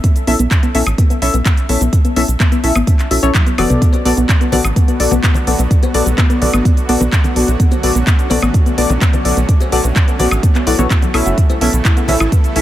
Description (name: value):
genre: progressive house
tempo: 127 BPM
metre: 4/4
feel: straight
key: B minor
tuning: A4 = 440 Hz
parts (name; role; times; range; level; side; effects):
- soft round pluck; arpeggios; 0.0-12.6 s; F#3 to F#4; -20 LUFS; left 1 dB; chorus, sidechain pumping, tape echo
- electronic kick drum; drums; 0.0-12.4 s; none; -12 LUFS; equal; none
- house drum kit; drums; 0.0-12.6 s; handclaps, hi-hat, shaker, toms, woodblock; -21 LUFS; equal; none
- deep mellow chord stab; stabs; 0.3-12.6 s; B3 to E5; -19 LUFS; left 3 dB; chorus, sidechain pumping, tape echo
- tight sequencer bass; bass; 0.3-12.6 s; F#1 to B1; -16 LUFS; equal; tube saturation, sidechain pumping
- supersaw pad; sustained chords; 3.8-12.6 s; C#3 to A4; -24 LUFS; right 2 dB; sidechain pumping
- cowbell, bongos and congas; percussion; 3.9-12.2 s; none; -24 LUFS; left 4 dB; sidechain pumping on perc
room: digital ambience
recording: none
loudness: -11 LUFS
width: side -13 dB against mid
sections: 0.0-12.6 A section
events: filter sweep on synth pluck 0.0-12.6; drum fill 3.6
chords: 0.0 Bm7; 11.4 A